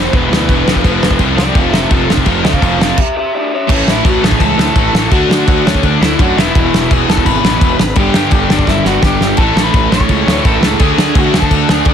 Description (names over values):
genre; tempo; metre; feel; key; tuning
punk rock; 169 BPM; 4/4; straight; unclear; A4 = 441 Hz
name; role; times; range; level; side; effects
lead guitar through a small cranked amp; melody; 0.0-11.9 s; C#4 to C#6; -17 LUFS; left 2 dB; overdrive
crunchy overdriven guitar; riff; 0.0-11.9 s; E2 to D4; -18 LUFS; right 12 dB; none
distorted electric guitar; riff; 0.0-11.9 s; E2 to D4; -19 LUFS; left 15 dB; distortion
distorted electric guitar; riff; 0.0-11.9 s; E2 to D4; -20 LUFS; left 2 dB; distortion
fuzz picked electric bass; bass; 0.0-11.9 s; E1 to D3; -18 LUFS; equal; overdrive
loose indie drum kit; drums; 0.1-11.9 s; crash cymbal, kick drum, snare drum; -13 LUFS; equal; none
room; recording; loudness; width
light reverb; dense, heavily limited modern master; -9 LUFS; side -8 dB against mid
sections
0.0-3.7 A section; 3.7-11.9 B section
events
lead electric guitar solo 0.0-3.7; stop 3.0-3.7; drum fill 8.7-9.4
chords
0.0 E5; 0.7 F; 3.7 A; 5.1 D; 6.4 E; 8.0 G5; 9.4 A; 10.8 D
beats
0.13 0.49 | 0.84 1.20 1.56 1.92 | 2.27 2.63 2.98 3.34 | 3.70 4.05 4.41 4.76 | 5.12 5.48 5.83 6.19 | 6.54 6.90 7.25 7.61 | 7.96 8.32 8.67 9.03 | 9.38 9.74 10.09 10.45 | 10.80 11.16 11.51 11.87